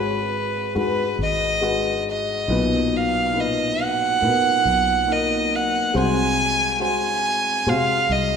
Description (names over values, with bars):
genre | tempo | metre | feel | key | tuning
folk | 70 BPM | 4/4 | straight | G# dorian | A4 = 440 Hz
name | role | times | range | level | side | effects
rich violin | melody | 0.0-8.4 s | B4 to G#5 | -20 LUFS | right 2 dB | none
warm upright piano | accompaniment | 0.0-8.4 s | G#1 to B#4 | -24 LUFS | left 3 dB | none
fingered electric bass | bass | 0.0-8.4 s | G#1 to B#2 | -27 LUFS | equal | none
room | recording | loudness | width
wet recital hall reverb, RT60 1.8 s | recorded in a church or concert hall | -18 LUFS | side -6 dB against mid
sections
0.0-8.4 A section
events
none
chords
0.0 G#m7; 2.5 Bmaj7; 5.9 G#7/B#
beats
0.76 1.62 | 2.49 3.35 4.21 5.08 | 5.94 6.80 7.66